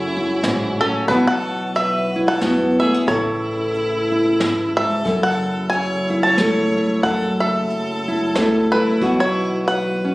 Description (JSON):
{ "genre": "acoustic folk duo or small band", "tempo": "91 BPM", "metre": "3/4", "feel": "swing 57% on 8ths", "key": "unclear", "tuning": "A4 = 444 Hz", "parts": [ { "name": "bluegrass banjo", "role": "melody", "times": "0.0-10.1 s", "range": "A4 to A5", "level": "-21 LUFS", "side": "equal", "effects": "none" }, { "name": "bright fiddle", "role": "second line", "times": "0.0-10.1 s", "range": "C#4 to C#5", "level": "-26 LUFS", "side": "right 1 dB", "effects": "none" }, { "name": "nylon-string guitar", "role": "accompaniment", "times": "0.0-10.1 s", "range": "F#2 to A4", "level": "-20 LUFS", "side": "equal", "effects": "none" }, { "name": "tonewheel organ", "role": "sustained chords", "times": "0.0-10.1 s", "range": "C#3 to A4", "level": "-27 LUFS", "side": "right 1 dB", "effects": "overdrive, fast rotary speaker" }, { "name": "upright bass", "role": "bass", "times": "0.0-10.1 s", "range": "F#1 to F#2", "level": "-31 LUFS", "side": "equal", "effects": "none" }, { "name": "vintage brush drum kit", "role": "drums", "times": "0.4-9.8 s", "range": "hi-hat, kick drum, snare drum", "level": "-26 LUFS", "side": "equal", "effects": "none" } ], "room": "light reverb", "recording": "recorded on a phone in the room, studio reverb, compression", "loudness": "-16 LUFS", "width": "side -20 dB against mid", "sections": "0.0-10.1 A section", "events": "none", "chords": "0.0 F#m7; 1.1 Bsus4; 3.1 A; 5.1 F#m7; 9.0 Bsus4", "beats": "0.43 | 1.09 1.75 2.41 | 3.07 3.73 4.39 | 5.05 5.71 6.37 | 7.03 7.69 8.35 | 9.01 9.67" }